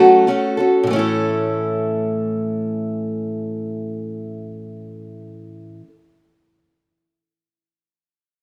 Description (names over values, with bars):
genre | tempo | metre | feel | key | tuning
rock | 67 BPM (dotted quarters) | 6/8 | straight | A major | A4 = 441 Hz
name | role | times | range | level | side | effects
picked acoustic archtop guitar | solo | 0.0-6.0 s | A2 to A4 | -19 LUFS | equal | none
room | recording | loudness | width
moderate lush hall reverb, RT60 2.3 s | rough home demo mix | -20 LUFS | mono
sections
0.9-4.4 A section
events
none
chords
0.0 F#m; 0.9 A